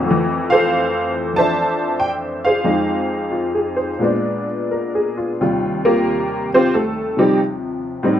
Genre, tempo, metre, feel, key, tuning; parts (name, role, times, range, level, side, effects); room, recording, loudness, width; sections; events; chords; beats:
solo jazz; 91 BPM; 4/4; swing 69% on 8ths, rubato; A4 = 440 Hz
honky-tonk upright piano; solo; 0.0-8.2 s; Eb2 to A5; -16 LUFS; equal
moderate studio reverb, RT60 0.7 s; band playing live in one room; -16 LUFS; side -10 dB against mid
0.0-5.4 A section; 5.4-8.2 B section
honky-tonk piano solo 5.4-8.2
0.1 Fmaj7; 2.7 Fm7; 4.0 Bb7b9; 5.4 Eb69
| 0.07 0.72 1.37 2.01 | 2.66 3.32 4.00 4.70 | 5.38 6.06 6.73 7.39 | 8.04